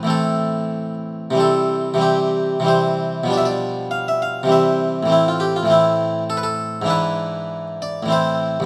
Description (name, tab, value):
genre	classical, baroque-style suite movement for harpsichord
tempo	89-104 BPM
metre	3/4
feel	rubato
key	C major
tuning	A4 = 440 Hz
part	harpsichord	solo	0.0-8.7 s	C2 to F5	-19 LUFS	equal	none
room	moderate stone room reverb, RT60 1.4 s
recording	dark, warm production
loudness	-19 LUFS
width	mono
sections	0.0-1.4 A section; 1.4-8.7 A section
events	none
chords	0.0 Am; 1.4 C; 3.3 G7/B; 4.5 C; 5.1 Am; 6.9 E7/G#; 8.1 Am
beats	0.10 0.76 | 1.41 2.04 2.69 | 3.32 3.92 4.52 | 5.12 5.72 6.31 | 6.91 7.51 8.11